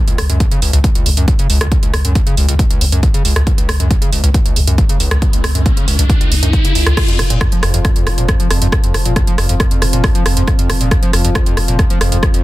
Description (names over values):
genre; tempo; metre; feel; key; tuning
driving peak-time techno; 137 BPM; 4/4; straight; unclear; A4 = 440 Hz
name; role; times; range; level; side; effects
overdriven acid bass; riff; 0.0-12.4 s; B1 to F3; -18 LUFS; equal; distortion, analog chorus, sidechain pumping
techno drum kit; drums; 0.1-12.4 s; crash cymbal, hi-hat, rim click; -19 LUFS; right 2 dB; sidechain pumping on hats, soft clipping on snare, sidechain pumping on cymbals
saturated sub bass; bass; 0.2-12.2 s; F1 to Db2; -16 LUFS; equal; tube saturation, sidechain pumping, low-pass filter
electronic kick drum; drums; 0.4-12.3 s; none; -14 LUFS; equal; none
riser; sound effects; 4.9-7.0 s; none; -23 LUFS; left 1 dB; none
analog drone; drone; 7.3-12.4 s; F3 to C4; -23 LUFS; equal; chorus, sidechain pumping
room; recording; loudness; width
little or no reverb; dense, heavily limited modern master; -11 LUFS; side -17 dB against mid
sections
0.0-7.0 A section; 7.0-12.4 B section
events
riser 4.9-7.0; drop 7.0-12.4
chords
0.0 Db5; 7.0 F5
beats
0.40 0.84 1.28 | 1.72 2.15 2.59 3.03 | 3.47 3.91 4.34 4.78 | 5.22 5.66 6.10 6.53 | 6.97 7.41 7.85 8.29 | 8.72 9.16 9.60 10.04 | 10.47 10.91 11.35 11.79 | 12.23